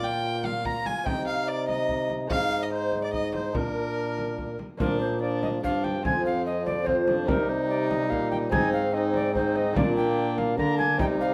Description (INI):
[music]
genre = classical, renaissance-style consort dance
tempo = 145 BPM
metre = 3/4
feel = straight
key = Bb mixolydian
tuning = A4 = 440 Hz
[part]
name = tenor recorder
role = melody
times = 0.0-11.3 s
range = Bb4 to Bb5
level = -33 LUFS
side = equal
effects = none
[part]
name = warm violin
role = second line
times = 0.0-11.3 s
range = C4 to Bb5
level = -33 LUFS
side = equal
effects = none
[part]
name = lute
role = accompaniment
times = 0.0-11.3 s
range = F2 to Ab4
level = -37 LUFS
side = equal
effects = none
[part]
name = mellow bassoon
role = accompaniment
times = 0.0-11.3 s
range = F3 to F4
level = -34 LUFS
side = equal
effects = none
[part]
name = clear trombone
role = bass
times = 0.0-11.3 s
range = F2 to D3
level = -32 LUFS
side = equal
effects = none
[part]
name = frame drum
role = percussion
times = 0.4-11.2 s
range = none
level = -34 LUFS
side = equal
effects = none
[sound]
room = moderate stone room reverb, RT60 1.2 s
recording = dark, warm production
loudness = -26 LUFS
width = mono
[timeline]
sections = 0.0-4.8 A section; 4.8-11.3 A section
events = none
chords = 0.0 Bb; 1.1 Cm; 2.3 Ab; 3.5 Bb; 6.0 F5; 7.3 Cm; 8.5 Ab; 9.8 Bb